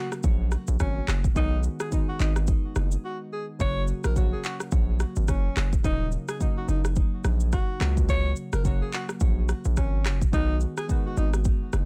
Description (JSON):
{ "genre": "afrobeats", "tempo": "107 BPM", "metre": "4/4", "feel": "swing 58% on 16ths", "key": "F# major", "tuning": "A4 = 440 Hz", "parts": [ { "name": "breathy alto saxophone", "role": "melody", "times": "0.0-11.3 s", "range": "C#4 to C#5", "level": "-36 LUFS", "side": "equal", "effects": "plate reverb, digital delay" }, { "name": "warm analog keys", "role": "accompaniment", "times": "0.0-11.9 s", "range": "C#3 to F#4", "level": "-37 LUFS", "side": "equal", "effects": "chorus, plate reverb" }, { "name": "afro-pop drum kit", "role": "drums", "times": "0.1-11.9 s", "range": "handclaps, kick drum, rim click, shaker", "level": "-29 LUFS", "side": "equal", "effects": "none" }, { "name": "hard-hitting 808-style bass", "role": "bass", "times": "0.2-11.9 s", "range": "D#1 to C#2", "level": "-27 LUFS", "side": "equal", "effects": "none" } ], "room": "little or no reverb", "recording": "none", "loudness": "-26 LUFS", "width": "mono", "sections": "0.0-11.9 A section", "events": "break 3.0-3.6", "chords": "0.0 F#; 1.4 B6; 3.6 F#; 5.8 D#m7; 7.8 F#; 10.3 B6" }